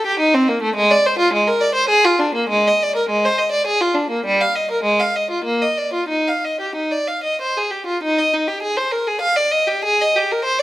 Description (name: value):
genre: classical, baroque-style suite movement for unaccompanied violin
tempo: 86-105 BPM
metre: 3/4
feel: rubato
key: Eb major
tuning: A4 = 440 Hz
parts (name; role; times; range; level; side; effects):
- rich violin; solo; 0.0-10.6 s; G3 to F5; -15 LUFS; equal; none
room: moderate recital hall reverb, RT60 1.5 s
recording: close, detailed microphones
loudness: -15 LUFS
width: side -16 dB against mid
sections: 0.0-8.0 A section; 8.0-10.6 B section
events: none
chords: none